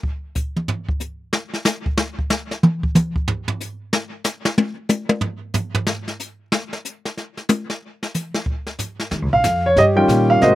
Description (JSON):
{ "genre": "jazz piano trio", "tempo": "185 BPM", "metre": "4/4", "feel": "swing 63% on 8ths", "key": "Eb mixolydian", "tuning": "A4 = 440 Hz", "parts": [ { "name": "jazz brush drum kit", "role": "drums", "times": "0.0-10.6 s", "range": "brushed snare drum, hi-hat, kick drum, snare drum, toms", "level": "-20 LUFS", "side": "equal", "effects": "none" }, { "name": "upright bass", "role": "bass", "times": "9.1-10.6 s", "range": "Bb1 to Bb2", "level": "-20 LUFS", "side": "equal", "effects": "none" }, { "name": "warm baby grand piano", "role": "melody", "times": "9.3-10.6 s", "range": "C3 to G5", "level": "-13 LUFS", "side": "equal", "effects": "none" } ], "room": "little or no reverb", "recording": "recorded outdoors, with no room sound", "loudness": "-19 LUFS", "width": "side -15 dB against mid", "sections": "0.0-9.1 A section; 9.1-10.6 B section", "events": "drum solo 0.0-9.1", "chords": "0.0 N.C.; 9.1 Eb9" }